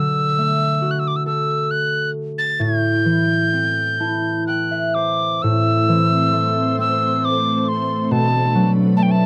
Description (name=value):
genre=celtic folk, Celtic slow air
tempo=62-71 BPM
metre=3/4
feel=rubato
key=A dorian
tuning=A4 = 440 Hz
part: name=tin whistle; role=melody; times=0.0-9.3 s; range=G5 to A6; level=-22 LUFS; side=equal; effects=none
part: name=concert harp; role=accompaniment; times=0.0-9.3 s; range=A2 to A5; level=-22 LUFS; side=equal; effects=none
part: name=soft additive organ-like pad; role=sustained chords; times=5.4-9.3 s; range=A3 to C5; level=-25 LUFS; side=equal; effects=ensemble chorus, built-in reverb
room=light reverb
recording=dry, close 1970s-style studio recording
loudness=-19 LUFS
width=mono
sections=0.0-5.4 A section; 5.4-9.3 A section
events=harp fill 3.5-5.4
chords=0.0 D; 2.6 Am; 8.1 Bm7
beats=0.82 1.70 | 2.59 3.52 4.47 | 5.42 6.33 7.24 | 8.11 8.97